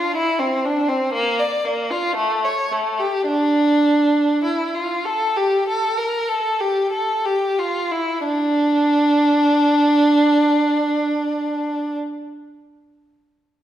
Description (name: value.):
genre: classical, baroque-style suite movement for unaccompanied violin.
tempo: 44-62 BPM.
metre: 4/4.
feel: rubato.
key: D minor.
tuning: A4 = 441 Hz.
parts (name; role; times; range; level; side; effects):
clear violin; solo; 0.0-12.0 s; A3 to D5; -17 LUFS; equal; none.
room: wet recital hall reverb, RT60 1.6 s.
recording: heard from further back in the room.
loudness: -17 LUFS.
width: side -11 dB against mid.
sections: 0.0-8.2 A section; 8.2-13.4 B section.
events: slowing down 0.0-8.2.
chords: none.